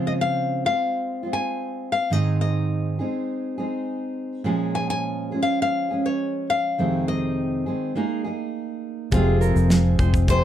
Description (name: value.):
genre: acoustic pop.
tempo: 103 BPM.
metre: 4/4.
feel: straight.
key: unclear.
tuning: A4 = 437 Hz.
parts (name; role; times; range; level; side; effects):
fingerpicked steel-string acoustic guitar; accompaniment; 0.0-10.4 s; F2 to Ab4; -24 LUFS; right 2 dB; none.
nylon-string guitar; melody; 0.1-10.4 s; F4 to Ab5; -26 LUFS; left 4 dB; none.
warm grand piano; accompaniment; 9.1-10.4 s; C4 to F5; -34 LUFS; left 6 dB; none.
nylon-string guitar; arpeggios; 9.1-10.1 s; Ab4 to C5; -29 LUFS; right 5 dB; none.
vintage muted fingered electric bass; bass; 9.1-10.4 s; F1; -19 LUFS; equal; none.
modern studio drum kit; drums; 9.1-10.4 s; kick drum, shaker, snare drum; -24 LUFS; equal; none.
room: light reverb.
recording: dark, warm production.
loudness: -21 LUFS.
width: side -11 dB against mid.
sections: 0.0-9.1 A section; 9.1-10.4 B section.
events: none.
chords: 0.0 Dbmaj7; 2.1 Ab; 4.5 Bbm7; 6.8 Fm7; 8.0 Absus2; 9.1 Fm.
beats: 0.36 0.94 1.53 | 2.11 2.70 3.28 3.87 | 4.45 5.04 5.62 6.21 | 6.79 7.37 7.96 8.54 | 9.12 9.71 10.29.